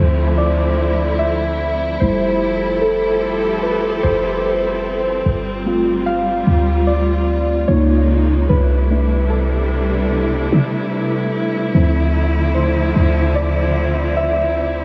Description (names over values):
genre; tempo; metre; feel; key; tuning
contemporary R&B; 74 BPM; 4/4; straight; D minor; A4 = 440 Hz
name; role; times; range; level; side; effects
muted felt-like synth keys; accompaniment; 0.0-14.8 s; F3 to F5; -22 LUFS; equal; chorus, phaser
warm studio string section; sustained chords; 0.0-14.8 s; C3 to A4; -23 LUFS; equal; none
clean 808-style bass; bass; 0.0-14.8 s; F1 to C3; -21 LUFS; equal; none
room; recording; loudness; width
moderate lush hall reverb, RT60 2.9 s; dreamy mix soaked in reverb; -17 LUFS; mono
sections
0.0-14.8 A section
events
synth keys solo 0.0-14.8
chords
0.0 Dm9; 2.0 Fmaj9; 5.3 G9sus4; 7.7 C#6; 8.5 C6; 11.7 Dm9